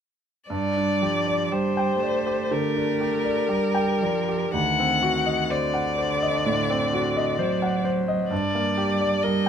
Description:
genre	classical, slow romantic movement for piano trio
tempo	54-65 BPM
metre	4/4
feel	rubato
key	G minor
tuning	A4 = 440 Hz
part	rich violin	melody	0.5-9.5 s	Bb4 to F#5	-25 LUFS	left 4 dB	none
part	rich cello	second line	0.5-9.5 s	D3 to A3	-28 LUFS	right 5 dB	none
part	clear concert grand piano	accompaniment	0.5-9.5 s	D2 to G5	-25 LUFS	equal	none
room	light reverb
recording	close, detailed microphones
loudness	-21 LUFS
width	side -8 dB against mid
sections	0.5-9.5 A section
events	none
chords	0.5 Gm; 4.6 D7b9; 8.3 Gm

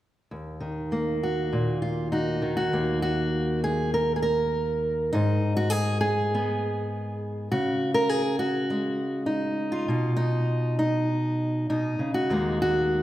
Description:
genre	folk, solo fingerstyle acoustic guitar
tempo	100 BPM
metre	4/4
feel	rubato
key	Eb minor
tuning	A4 = 439 Hz
part	fingerpicked steel-string acoustic guitar	solo	0.3-13.0 s	Eb2 to Bb4	-24 LUFS	equal	none
room	wet recital hall reverb, RT60 1.7 s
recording	recorded in a church or concert hall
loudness	-24 LUFS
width	side -14 dB against mid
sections	0.3-2.7 A section; 2.7-13.0 B section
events	none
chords	0.3 Ebm; 5.1 Abmadd9; 7.5 Dbsus4; 9.9 B; 12.3 Ebm

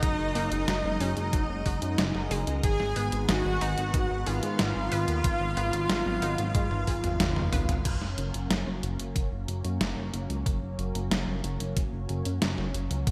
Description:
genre	synthwave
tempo	92 BPM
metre	4/4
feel	straight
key	F# major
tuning	A4 = 435 Hz
part	soft supersaw	melody	0.0-7.7 s	D#4 to G#4	-34 LUFS	equal	cassette tape, delay
part	string machine, violins	second line	0.0-7.7 s	D#5 to G#5	-42 LUFS	equal	ensemble chorus, digital delay
part	analog string pad	sustained chords	0.0-13.1 s	D#3 to A#4	-39 LUFS	equal	ensemble chorus, phaser, sidechain pumping
part	unison pluck	arpeggios	0.0-7.8 s	D#3 to B4	-41 LUFS	equal	none
part	chorused synth bass	bass	0.0-13.1 s	F#1 to G#2	-34 LUFS	equal	sidechain pumping
part	detuned 8-bit digital drum machine	drums	0.0-13.1 s	crash cymbal, hi-hat, snare drum, toms	-34 LUFS	equal	gated reverb
part	electronic kick drum	drums	0.0-13.1 s	none	-31 LUFS	equal	none
room	moderate lush hall reverb, RT60 2.6 s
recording	bright 1980s-style digital production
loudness	-29 LUFS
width	mono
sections	0.0-7.9 A section; 7.9-13.1 B section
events	drum fill 6.5-7.9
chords	0.0 F#add9; 2.6 G#m; 7.9 F#

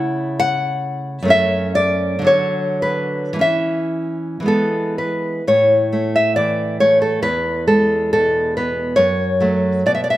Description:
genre	romantic piece for solo classical guitar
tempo	49-71 BPM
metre	2/4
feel	rubato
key	A major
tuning	A4 = 439 Hz
part	nylon-string guitar	solo	0.0-10.2 s	E2 to F#5	-15 LUFS	equal	none
room	moderate recital hall reverb, RT60 1.4 s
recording	none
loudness	-15 LUFS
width	side -15 dB against mid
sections	0.0-5.5 A section; 5.5-10.2 B section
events	none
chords	0.0 A/C#; 1.3 F#m7; 2.3 Bm/D; 3.4 A/E (rootless); 4.5 E; 5.5 A5; 7.2 E; 9.0 F#m

